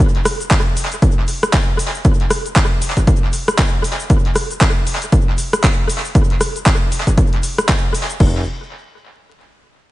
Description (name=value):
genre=deep house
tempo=117 BPM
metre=4/4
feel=swing 59% on 16ths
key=unclear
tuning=A4 = 440 Hz
part: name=deep house drum kit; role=drums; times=0.0-8.3 s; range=crash cymbal, handclaps, hi-hat, rim click, shaker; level=-19 LUFS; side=equal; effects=studio reverb, tape echo
part: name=electronic kick drum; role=drums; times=0.0-8.3 s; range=none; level=-14 LUFS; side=equal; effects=studio reverb
part: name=smooth synth bass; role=bass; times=8.2-8.4 s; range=F1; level=-19 LUFS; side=equal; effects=sidechain pumping
room=little or no reverb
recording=echo-heavy mix, vinyl crackle, nothing above 10.5 kHz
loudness=-13 LUFS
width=side -17 dB against mid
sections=0.0-8.2 A section; 8.2-9.9 B section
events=none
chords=none